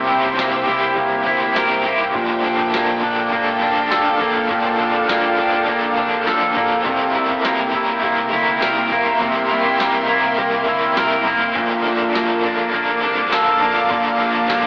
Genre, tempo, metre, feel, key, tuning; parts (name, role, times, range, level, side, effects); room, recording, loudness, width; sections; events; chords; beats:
dream pop; 102 BPM; 4/4; straight; Bb lydian; A4 = 440 Hz
biting overdriven guitar; accompaniment; 0.0-14.7 s; Bb2 to Bb4; -20 LUFS; equal; tremolo, wide subtle chorus, cassette tape
shimmering ambient pad; sustained chords; 0.0-14.7 s; Bb3 to D6; -20 LUFS; equal; chorus, built-in reverb, cassette tape
electric guitar at the edge of break-up; arpeggios; 0.0-14.7 s; Bb2 to Bb4; -19 LUFS; equal; wide subtle chorus, cassette tape, analog delay
fat analog bass; bass; 0.0-14.7 s; Bb1 to D2; -35 LUFS; equal; tube saturation
booming analog drum machine; drums; 0.2-14.6 s; kick drum, snare drum, toms; -28 LUFS; equal; cassette tape
moderate booth ambience, RT60 0.3 s; home recording on cassette, AM radio sound; -15 LUFS; side -36 dB against mid
0.0-14.7 A section
drum fill 6.3-6.9
0.0 C7; 2.1 Bbmaj7; 6.9 C7; 11.6 Bbmaj7
0.39 0.97 1.56 | 2.15 2.74 3.33 3.91 | 4.50 5.09 5.68 6.27 | 6.86 7.44 8.03 8.62 | 9.21 9.80 10.38 10.97 | 11.56 12.15 12.74 13.33 | 13.91 14.50